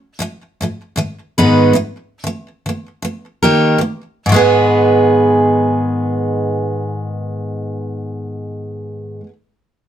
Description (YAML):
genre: pop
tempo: 116 BPM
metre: 4/4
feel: swing 60% on 16ths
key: G# minor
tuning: A4 = 439 Hz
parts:
  - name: picked steel-string acoustic guitar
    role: solo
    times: 0.2-9.3 s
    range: G#2 to B4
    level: -13 LUFS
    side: right 1 dB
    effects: none
room: light reverb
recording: none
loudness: -13 LUFS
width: side -10 dB against mid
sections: 0.0-4.3 A section; 4.3-8.4 B section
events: none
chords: 0.2 G#m; 2.3 D#; 4.3 G#m